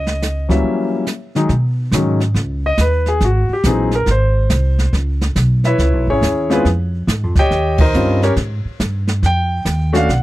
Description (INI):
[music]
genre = jazz piano trio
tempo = 140 BPM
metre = 4/4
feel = swing 66% on 8ths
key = unclear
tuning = A4 = 441 Hz
[part]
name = clear concert grand piano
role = melody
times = 0.0-10.2 s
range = D#3 to G5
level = -17 LUFS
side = left 1 dB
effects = none
[part]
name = upright bass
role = bass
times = 0.0-10.2 s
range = G#1 to B2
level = -16 LUFS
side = equal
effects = none
[part]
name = jazz brush drum kit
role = drums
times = 0.1-10.2 s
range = brushed snare drum, hi-hat, kick drum, ride cymbal, snare drum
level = -19 LUFS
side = right 1 dB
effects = none
[sound]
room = little or no reverb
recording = dry, close 1970s-style studio recording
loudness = -14 LUFS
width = side -16 dB against mid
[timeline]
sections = 0.0-1.5 A section; 1.5-10.2 B section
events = band accent 7.7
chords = 0.0 C#m; 0.6 F#7b9; 1.5 B69; 3.2 G#7; 4.9 C#m9; 6.7 C#; 7.5 D#13; 8.4 G#5